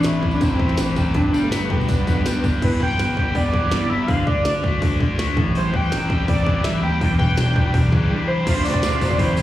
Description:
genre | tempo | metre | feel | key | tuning
indie rock | 164 BPM | 4/4 | straight | A minor | A4 = 440 Hz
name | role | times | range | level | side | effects
pulse-width lead | melody | 0.0-9.4 s | A3 to G5 | -24 LUFS | equal | chorus, slapback echo, analog delay
biting overdriven guitar | riff | 0.0-9.4 s | E2 to G4 | -25 LUFS | left 4 dB | slapback echo
clean electric guitar | riff | 0.0-9.4 s | G2 to C5 | -25 LUFS | right 3 dB | ensemble chorus, slapback echo
fuzz picked electric bass | bass | 0.0-9.4 s | E1 to F2 | -23 LUFS | left 1 dB | overdrive
glitchy drum kit | drums | 0.0-9.4 s | crash cymbal, hi-hat, kick drum, snare drum | -22 LUFS | equal | none
tambourine | percussion | 0.0-2.6, 8.5-9.4 s | none | -39 LUFS | right 5 dB | none
room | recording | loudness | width
little or no reverb | live gig heard through the venue's PA, club reverb, small room ambience | -17 LUFS | side -13 dB against mid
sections
0.0-2.6 A section; 2.6-8.5 B section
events
break 8.1-8.5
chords
0.0 Am; 1.1 G; 2.6 G6; 4.1 D5; 5.4 Am7; 7.0 Em7; 8.5 Dm7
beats
0.05 0.41 0.78 | 1.15 1.51 1.88 2.25 | 2.62 2.98 3.35 3.72 | 4.08 4.45 4.82 5.18 | 5.55 5.92 6.28 6.65 | 7.01 7.38 7.74 8.11 | 8.47 8.83 9.20

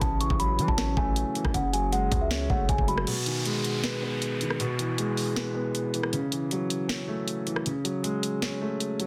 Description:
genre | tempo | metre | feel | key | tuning
hip hop, trap | 157 BPM | 4/4 | half-time | G# phrygian | A4 = 440 Hz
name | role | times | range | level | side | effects
celesta | melody | 0.0-3.0 s | E5 to C#6 | -33 LUFS | equal | low-pass filter, digital delay
dark concert grand piano | accompaniment | 0.0-9.1 s | B2 to B4 | -31 LUFS | equal | low-pass filter
distorted 808-style bass | bass | 0.0-3.1 s | F#1 to E3 | -32 LUFS | equal | distortion
trap drum kit | drums | 0.0-9.1 s | crash cymbal, hi-hat, kick drum, rim click, snare drum | -32 LUFS | equal | soft clipping on snare
downlifter | sound effects | 3.1-6.1 s | none | -38 LUFS | equal | none
room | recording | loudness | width
light reverb | dense, heavily limited modern master | -28 LUFS | mono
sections
0.0-3.1 A section; 3.1-9.1 B section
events
break 3.1-9.1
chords
0.0 A6; 1.5 F#madd9; 3.1 G#m; 4.6 E; 6.1 A6; 7.7 F#madd9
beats
| 0.01 0.40 0.78 1.16 | 1.54 1.93 2.31 2.69 | 3.07 3.45 3.83 4.22 | 4.60 4.98 5.36 5.75 | 6.13 6.51 6.89 7.28 | 7.66 8.04 8.42 8.80

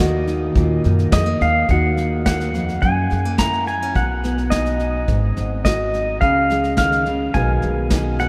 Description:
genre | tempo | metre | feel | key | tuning
acoustic folk duo or small band | 106 BPM | 4/4 | straight | Eb minor | A4 = 440 Hz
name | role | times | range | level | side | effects
pedal steel guitar | melody | 0.0-8.3 s | Eb5 to Bb5 | -24 LUFS | equal | none
nylon-string guitar | accompaniment | 0.0-8.3 s | Eb2 to Gb4 | -24 LUFS | equal | none
upright bass | bass | 0.0-8.3 s | Ab1 to Gb2 | -24 LUFS | equal | none
soft brush drum kit | drums | 0.3-8.3 s | kick drum, snare drum | -25 LUFS | equal | none
room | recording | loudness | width
wet cathedral reverb, RT60 6.6 s | in a vast, echoing space | -19 LUFS | mono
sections
0.0-1.7 A section; 1.7-8.3 B section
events
none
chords
0.0 Ebm; 2.8 Gb7; 3.9 B; 5.1 Ab7; 6.2 Db; 7.3 Abm/Cb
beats
0.56 1.12 | 1.69 2.25 2.82 3.38 | 3.95 4.51 5.08 5.64 | 6.21 6.78 7.34 7.91

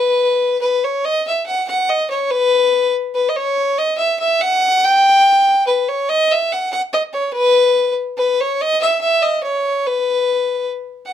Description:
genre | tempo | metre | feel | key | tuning
alpine folk | 143 BPM | 3/4 | straight | B major | A4 = 440 Hz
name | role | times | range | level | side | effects
clear fiddle | solo | 0.0-11.1 s | B4 to G5 | -14 LUFS | left 1 dB | none
room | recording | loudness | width
light reverb | none | -14 LUFS | side -10 dB against mid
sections
0.0-1.0 A section; 1.0-11.1 B section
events
none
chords
none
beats
0.18 0.60 | 1.03 1.45 1.87 | 2.29 2.71 3.13 | 3.55 3.97 4.39 | 4.81 5.23 5.66 | 6.08 6.51 6.93 | 7.35 7.77 8.19 | 8.60 9.02 9.44 | 9.86 10.28 10.70 | 11.13

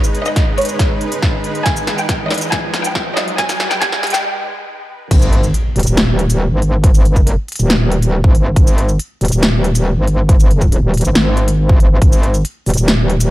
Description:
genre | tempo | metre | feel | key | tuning
heavy wobble dubstep | 139 BPM | 4/4 | half-time | G# harmonic minor | A4 = 436 Hz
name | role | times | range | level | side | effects
supersaw pad | sustained chords | 0.0-5.1 s | G#3 to B4 | -25 LUFS | right 1 dB | vintage 12-bit sampler grit, sidechain pumping
big-room dance drum kit | drums | 0.0-13.3 s | crash cymbal, hi-hat, shaker, snare drum | -19 LUFS | equal | high-pass filter on hats, high-pass filter on snare, high-pass filter on perc, high-pass filter on cymbals, high-pass filter on room
riser and impact | sound effects | 1.1-6.8 s | none | -24 LUFS | equal | none
clear studio violin section | melody | 0.3-4.2 s | C#5 to G#5 | -20 LUFS | equal | low-pass filter, dub echo
electronic kick drum | drums | 0.4-12.1 s | none | -12 LUFS | equal | none
metallic wobble bass | bass | 5.1-13.3 s | D#1 to G#1 | -13 LUFS | equal | chorus, overdrive
room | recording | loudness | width
light reverb | dark, warm production, high-pass filter | -12 LUFS | side -16 dB against mid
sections
0.0-5.1 A section; 5.1-13.3 B section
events
build-up 0.0-5.1; drum fill 0.0-4.2; filter sweep on violin section 0.0-5.1; filter sweep 0.0-5.1; riser 1.1-4.2; break 4.2-5.1; drop 5.1-13.3; impact 5.1-6.8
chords
0.0 G#m; 5.1 G#5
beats
0.36 0.79 1.23 | 1.66 2.09 2.52 2.95 | 3.38 3.81 4.25 4.68 | 5.11 5.54 5.97 6.41 | 6.84 7.27 7.70 8.13 | 8.56 8.99 9.43 9.86 | 10.29 10.72 11.15 11.59 | 12.02 12.45 12.88

